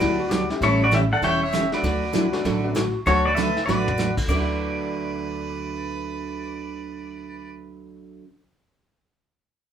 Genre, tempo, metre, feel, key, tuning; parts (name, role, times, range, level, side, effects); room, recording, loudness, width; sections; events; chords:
country, western swing; 196 BPM; 4/4; swing 62% on 8ths; D major; A4 = 442 Hz
pedal steel guitar; melody; 0.0-7.5 s; E4 to G5; -24 LUFS; left 1 dB
clean lap steel guitar; second line; 0.0-3.0 s; E4 to A4; -27 LUFS; left 6 dB
clear fiddle; second line; 0.0-7.5 s; A4 to E5; -33 LUFS; right 3 dB
clear upright piano; accompaniment; 0.0-8.3 s; D2 to B4; -34 LUFS; left 2 dB
picked steel-string acoustic guitar; accompaniment; 0.0-8.2 s; D3 to B4; -27 LUFS; right 4 dB
upright bass; bass; 0.0-8.2 s; E1 to D2; -28 LUFS; equal
vintage brush drum kit; drums; 0.0-4.2 s; brushed snare drum, crash cymbal, hi-hat, kick drum, snare drum, toms; -30 LUFS; equal
wet small room reverb, RT60 0.5 s; band playing live in one room; -20 LUFS; side -8 dB against mid
0.0-3.1 A section; 3.1-4.3 B section; 4.3-6.7 C section
drum fill 3.7-4.0
0.0 Gmaj7; 0.6 A7; 1.8 D6